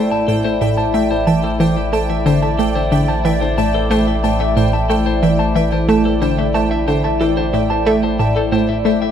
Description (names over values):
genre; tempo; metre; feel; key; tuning
ambient, sequencer-driven space music; 91 BPM; 4/4; straight; A minor; A4 = 440 Hz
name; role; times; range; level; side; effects
sweeping resonant pad; sustained chords; 0.0-9.1 s; A3 to B5; -20 LUFS; left 1 dB; chorus, phaser
clean electric guitar; arpeggios; 0.0-9.1 s; A4 to A5; -22 LUFS; moving between left 6 dB and right 2 dB; auto-pan, ping-pong delay
analog pluck; riff; 0.0-9.0 s; A2 to A3; -17 LUFS; equal; chorus, ping-pong delay
round analog bass; bass; 0.0-9.1 s; A1; -22 LUFS; equal; none
pulsing gated texture; texture; 0.0-9.1 s; G5; -28 LUFS; right 6 dB; chorus, built-in reverb
room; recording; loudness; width
wet spring reverb, RT60 2.3 s; echo-heavy mix; -14 LUFS; side -9 dB against mid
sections
0.0-9.1 A section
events
none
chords
0.0 Am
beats
0.61 1.27 | 1.93 2.59 3.25 3.91 | 4.57 5.23 5.89 6.54 | 7.20 7.86 8.52